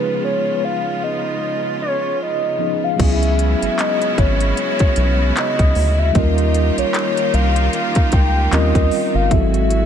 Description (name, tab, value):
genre	contemporary R&B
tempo	76 BPM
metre	4/4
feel	swing 58% on 16ths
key	unclear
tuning	A4 = 440 Hz
part	soft octave-layered synth lead	melody	0.0-9.9 s	B4 to G5	-21 LUFS	left 1 dB	chorus, phaser, ping-pong delay
part	mellow tine electric piano	accompaniment	0.0-9.9 s	E#3 to A#4	-23 LUFS	equal	medium stereo tremolo
part	bright studio string section	sustained chords	0.0-9.9 s	C#3 to G4	-24 LUFS	right 2 dB	none
part	rubbery square bass	bass	3.0-9.9 s	G1 to D#2	-17 LUFS	equal	none
part	trap drum kit	drums	3.0-9.9 s	crash cymbal, handclaps, hi-hat, kick drum	-19 LUFS	equal	vintage 12-bit sampler grit
room	little or no reverb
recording	none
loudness	-15 LUFS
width	side -8 dB against mid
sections	0.0-3.0 A section; 3.0-9.9 B section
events	break 0.0-3.0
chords	0.0 C#7; 3.0 C#m7; 6.2 D#13; 9.3 G#7b9b13